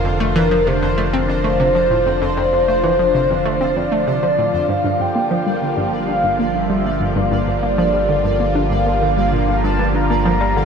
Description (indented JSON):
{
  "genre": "ambient, sequencer-driven space music",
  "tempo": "97 BPM",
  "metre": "4/4",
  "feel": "straight",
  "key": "G minor",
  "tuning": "A4 = 441 Hz",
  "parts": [
    { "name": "mellow horn-like synth lead", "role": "melody", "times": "0.0-10.7 s", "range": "A4 to Bb5", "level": "-19 LUFS", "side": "left 1 dB", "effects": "analog chorus, shimmer reverb, ping-pong delay" },
    { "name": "lush unison pad", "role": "sustained chords", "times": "0.0-10.7 s", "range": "D3 to F4", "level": "-21 LUFS", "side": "right 1 dB", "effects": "chorus, phaser, shimmer reverb" },
    { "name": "analog pluck", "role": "riff", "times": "0.0-10.7 s", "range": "F2 to D4", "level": "-21 LUFS", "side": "equal", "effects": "chorus, shimmer reverb, ping-pong delay" },
    { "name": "round analog bass", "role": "bass", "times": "0.0-10.7 s", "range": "F1 to G1", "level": "-24 LUFS", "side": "equal", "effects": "none" },
    { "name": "pulsing gated texture", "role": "texture", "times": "0.0-10.7 s", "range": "C5 to D5", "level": "-35 LUFS", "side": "left 1 dB", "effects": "chorus, built-in reverb, shimmer reverb" }
  ],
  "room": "wet plate reverb, RT60 3.0 s",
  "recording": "none",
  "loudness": "-15 LUFS",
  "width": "side -6 dB against mid",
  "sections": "0.0-10.7 A section",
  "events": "none",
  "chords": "0.0 F6; 4.7 Gm7"
}